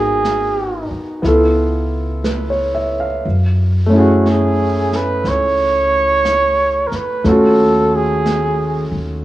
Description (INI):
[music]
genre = jazz ballad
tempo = 60 BPM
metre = 4/4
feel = swing 67% on 8ths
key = unclear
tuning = A4 = 438 Hz
[part]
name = breathy trumpet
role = melody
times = 0.0-8.9 s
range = F#4 to C#5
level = -16 LUFS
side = right 2 dB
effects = cassette tape
[part]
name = clear grand piano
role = accompaniment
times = 0.0-9.2 s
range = A3 to E#5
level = -17 LUFS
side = equal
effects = cassette tape
[part]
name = upright bass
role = bass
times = 0.0-9.2 s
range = G#1 to F#2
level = -20 LUFS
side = equal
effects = none
[part]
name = jazz brush drum kit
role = drums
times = 0.2-9.2 s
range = brushed snare drum, hi-hat, snare drum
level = -28 LUFS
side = right 1 dB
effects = cassette tape
[sound]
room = light reverb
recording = home recording on cassette, small room ambience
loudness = -13 LUFS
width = side -15 dB against mid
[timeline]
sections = 0.0-9.2 A section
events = none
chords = 0.0 G#m9; 1.2 C#7alt; 3.2 F#m9; 7.3 D#m7b5